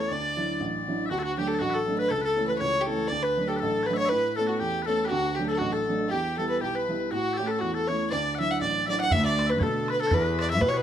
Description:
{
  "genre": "celtic folk, Celtic polka",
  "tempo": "120 BPM",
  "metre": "2/4",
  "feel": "swing 55% on 8ths",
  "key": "D major",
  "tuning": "A4 = 440 Hz",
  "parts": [
    { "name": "rich fiddle", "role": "melody", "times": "0.0-10.8 s", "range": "F#4 to F#5", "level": "-26 LUFS", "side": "equal", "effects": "none" },
    { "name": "loud bright bagpipes", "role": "second line", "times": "0.0-10.8 s", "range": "F#4 to F#5", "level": "-33 LUFS", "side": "left 6 dB", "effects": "none" },
    { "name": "warm upright piano", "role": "accompaniment", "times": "0.0-10.8 s", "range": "A1 to G4", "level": "-30 LUFS", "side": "right 3 dB", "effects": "none" },
    { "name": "rich cello", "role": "bass", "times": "9.1-10.8 s", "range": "D2 to B2", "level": "-28 LUFS", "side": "equal", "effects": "none" },
    { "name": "bodhran", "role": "percussion", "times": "9.1-10.7 s", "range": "none", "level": "-28 LUFS", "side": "right 1 dB", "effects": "none" }
  ],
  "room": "moderate studio reverb, RT60 0.6 s",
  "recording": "dark, warm production",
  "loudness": "-24 LUFS",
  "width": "side -10 dB against mid",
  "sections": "0.0-1.1 A section; 1.1-9.1 A section; 9.1-10.8 B section",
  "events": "none",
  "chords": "0.1 Dadd9; 1.1 D; 2.1 A/C#; 3.1 D; 4.1 Aadd9; 5.1 D; 6.1 Em; 7.1 A; 8.1 Dadd9; 9.1 D; 10.1 Em",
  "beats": "| 0.09 0.59 | 1.10 1.60 | 2.10 2.60 | 3.10 3.61 | 4.11 4.61 | 5.11 5.61 | 6.11 6.61 | 7.11 7.61 | 8.11 8.61 | 9.11 9.61 | 10.11 10.61"
}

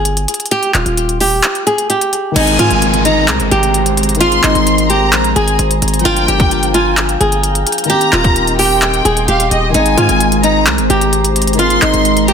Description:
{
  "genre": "hip hop, trap",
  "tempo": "130 BPM",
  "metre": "4/4",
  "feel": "half-time",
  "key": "unclear",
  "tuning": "A4 = 441 Hz",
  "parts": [
    { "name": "flamenco guitar", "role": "melody", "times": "0.0-12.3 s", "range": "Eb4 to Ab4", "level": "-15 LUFS", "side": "right 1 dB", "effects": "ping-pong delay" },
    { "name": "hard-hitting 808-style bass", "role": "bass", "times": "0.0-12.3 s", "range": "Eb1 to Ab2", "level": "-17 LUFS", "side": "equal", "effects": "none" },
    { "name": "trap drum kit", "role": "drums", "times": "0.1-12.3 s", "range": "crash cymbal, handclaps, hi-hat, kick drum", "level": "-16 LUFS", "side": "equal", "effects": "overdrive" },
    { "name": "dark baby grand piano", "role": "accompaniment", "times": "2.3-12.3 s", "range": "Eb3 to Ab4", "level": "-21 LUFS", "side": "left 3 dB", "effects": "none" },
    { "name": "warm symphonic violin section", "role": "second line", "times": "2.4-12.3 s", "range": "Eb5 to C6", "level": "-17 LUFS", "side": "left 1 dB", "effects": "ping-pong delay" },
    { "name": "glassy FM pad", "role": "sustained chords", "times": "2.7-12.3 s", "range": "Ab3 to C6", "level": "-19 LUFS", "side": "equal", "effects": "ensemble chorus, built-in reverb" },
    { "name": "downlifter", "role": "sound effects", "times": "2.4-6.1 s", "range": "none", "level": "-23 LUFS", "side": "equal", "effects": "none" }
  ],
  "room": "light reverb",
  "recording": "dense, heavily limited modern master",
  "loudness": "-10 LUFS",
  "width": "side -7 dB against mid",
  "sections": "0.0-2.4 A section; 2.4-12.3 B section",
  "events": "kick muted 1.4-2.4",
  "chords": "0.0 Fmadd9/G (rootless); 0.5 Eb; 2.4 Abadd9; 6.1 Gm7; 7.9 Eb6; 9.7 Abadd9",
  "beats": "0.05 | 0.51 0.97 1.44 1.90 | 2.36 2.82 3.28 3.74 | 4.21 4.67 5.13 5.59 | 6.05 6.51 6.97 7.44 | 7.90 8.36 8.82 9.28 | 9.74 10.21 10.67 11.13 | 11.59 12.05"
}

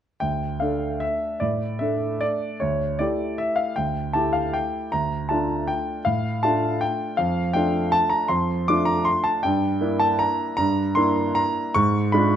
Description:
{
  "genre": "classical, piano waltz",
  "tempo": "146-168 BPM",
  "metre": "3/4",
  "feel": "rubato",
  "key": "D minor",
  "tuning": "A4 = 440 Hz",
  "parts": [
    { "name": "clear grand piano", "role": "solo", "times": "0.2-12.4 s", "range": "D2 to D6", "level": "-20 LUFS", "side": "equal", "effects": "none" }
  ],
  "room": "light reverb",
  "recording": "close, detailed microphones",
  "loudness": "-21 LUFS",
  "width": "side -9 dB against mid",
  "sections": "0.2-12.4 A section",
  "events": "none",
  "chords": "0.2 Dm; 2.6 A7/D; 4.9 Dm; 7.2 Dm/F; 9.4 Em7b5/G; 11.8 G#dim7",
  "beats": "| 0.22 0.62 1.02 | 1.42 1.81 2.22 | 2.60 2.99 3.39 | 3.76 4.14 4.54 | 4.93 5.30 5.69 | 6.06 6.44 6.82 | 7.19 7.56 7.93 | 8.31 8.69 9.07 | 9.44 9.81 10.20 | 10.59 10.97 11.37 | 11.76 12.14"
}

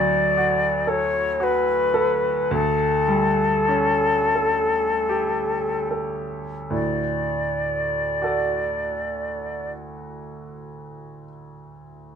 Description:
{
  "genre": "classical, romantic duo for flute and grand piano",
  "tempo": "35-58 BPM",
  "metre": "3/4",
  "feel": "rubato",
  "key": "D major",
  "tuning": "A4 = 441 Hz",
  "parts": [
    { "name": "silver concert flute", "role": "melody", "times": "0.0-9.7 s", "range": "A4 to D5", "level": "-21 LUFS", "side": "left 2 dB", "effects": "none" },
    { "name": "bright grand piano", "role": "accompaniment", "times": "0.0-12.2 s", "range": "D2 to D5", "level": "-26 LUFS", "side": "right 1 dB", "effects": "none" }
  ],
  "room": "light reverb",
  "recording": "minimal, uncompressed stereo recording",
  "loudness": "-20 LUFS",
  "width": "side -7 dB against mid",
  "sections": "0.0-6.7 A section; 6.7-11.2 B section",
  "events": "slowing down 0.0-6.7",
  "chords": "0.0 D; 2.5 A7/D; 6.7 D",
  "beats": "0.34 1.40 | 2.50 3.67 5.08 | 6.70 8.20 9.69"
}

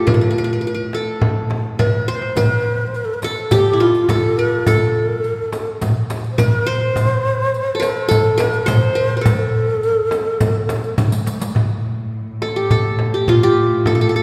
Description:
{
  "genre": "Arabic maqam ensemble",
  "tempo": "104 BPM",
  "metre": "4/4",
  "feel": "straight",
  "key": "A maqam bayati",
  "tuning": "A4 = 440 Hz",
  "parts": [
    { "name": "qanun", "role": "melody", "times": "0.0-14.2 s", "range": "E4 to C5", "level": "-21 LUFS", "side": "equal", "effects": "none" },
    { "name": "muted cello", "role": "drone", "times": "0.0-2.4, 11.5-14.2 s", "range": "A2", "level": "-28 LUFS", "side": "equal", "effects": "none" },
    { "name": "darbuka", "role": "percussion", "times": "0.1-14.0 s", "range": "none", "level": "-25 LUFS", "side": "equal", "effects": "none" },
    { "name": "frame drum", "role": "percussion", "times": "0.1-14.0 s", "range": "none", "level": "-23 LUFS", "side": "equal", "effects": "none" },
    { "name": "breathy low ney", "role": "second line", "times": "1.8-10.9 s", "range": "F4 to C5", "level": "-23 LUFS", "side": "equal", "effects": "none" },
    { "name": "riq", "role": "percussion", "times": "2.4-11.5 s", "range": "none", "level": "-33 LUFS", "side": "equal", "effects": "none" }
  ],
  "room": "wet concert hall reverb, RT60 2.2 s",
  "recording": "recorded in a church or concert hall",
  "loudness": "-17 LUFS",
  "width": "mono",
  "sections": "0.0-2.4 A section; 2.4-11.6 B section; 11.6-14.2 A section",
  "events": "drum fill 1.8-2.4, 11.0-11.6",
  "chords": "none",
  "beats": "| 0.07 0.64 1.22 1.79 | 2.37 2.94 3.51 4.09 | 4.66 5.24 5.81 6.39 | 6.96 7.54 8.11 8.68 | 9.26 9.83 10.41 10.98 | 11.56 12.13 12.71 13.29 | 13.86"
}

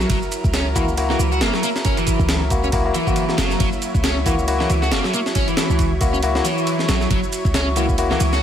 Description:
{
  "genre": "breakbeat, breaks",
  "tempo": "137 BPM",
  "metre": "4/4",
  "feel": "swing 57% on 16ths",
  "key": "unclear",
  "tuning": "A4 = 442 Hz",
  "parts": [
    { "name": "lush unison pad", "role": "sustained chords", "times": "0.0-8.4 s", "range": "F#3 to C#5", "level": "-26 LUFS", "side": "equal", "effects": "chorus, sidechain pumping" },
    { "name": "crunchy overdriven guitar", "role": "riff", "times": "0.0-8.4 s", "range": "E3 to F#4", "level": "-23 LUFS", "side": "equal", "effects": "digital delay" },
    { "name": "warm 808-style bass", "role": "bass", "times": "0.0-8.4 s", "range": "F#1 to C#2", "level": "-22 LUFS", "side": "equal", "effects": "none" },
    { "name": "breakbeat sampler-style drum kit", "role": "drums", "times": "0.0-8.4 s", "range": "kick drum, ride cymbal, snare drum", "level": "-22 LUFS", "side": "equal", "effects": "studio reverb" },
    { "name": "shaker", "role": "drums", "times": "0.0-8.4 s", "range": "none", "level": "-33 LUFS", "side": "right 4 dB", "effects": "studio reverb" },
    { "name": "barky tine electric piano", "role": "stabs", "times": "0.8-8.2 s", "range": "A#3 to F#4", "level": "-24 LUFS", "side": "left 5 dB", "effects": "digital delay" }
  ],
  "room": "light reverb",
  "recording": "none",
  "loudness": "-17 LUFS",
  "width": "side -9 dB against mid",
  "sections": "0.0-8.4 A section",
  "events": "none",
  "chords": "0.0 F#7",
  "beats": "| 0.10 0.54 0.97 1.41 | 1.85 2.29 2.73 3.17 | 3.60 4.04 4.48 4.92 | 5.36 5.79 6.23 6.67 | 7.11 7.54 7.98 8.42"
}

